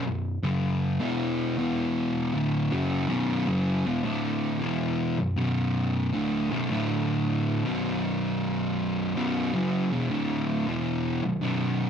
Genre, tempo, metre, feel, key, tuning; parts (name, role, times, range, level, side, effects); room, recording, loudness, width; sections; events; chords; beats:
metal; 79 BPM; 4/4; straight; B minor; A4 = 440 Hz
fuzz guitar; solo; 0.0-11.9 s; B1 to F#3; -25 LUFS; equal; distortion
moderate studio reverb, RT60 0.7 s; -25 LUFS; side -8 dB against mid
0.0-3.1 A section; 3.1-11.9 B section
0.0 B5; 1.6 E5; 2.3 Dmaj7; 3.1 Bm; 6.7 D5; 7.6 Bm
| 0.06 0.82 1.58 2.34 | 3.10 3.85 4.61 5.37 | 6.13 6.88 7.64 8.40 | 9.15 9.91 10.66 11.41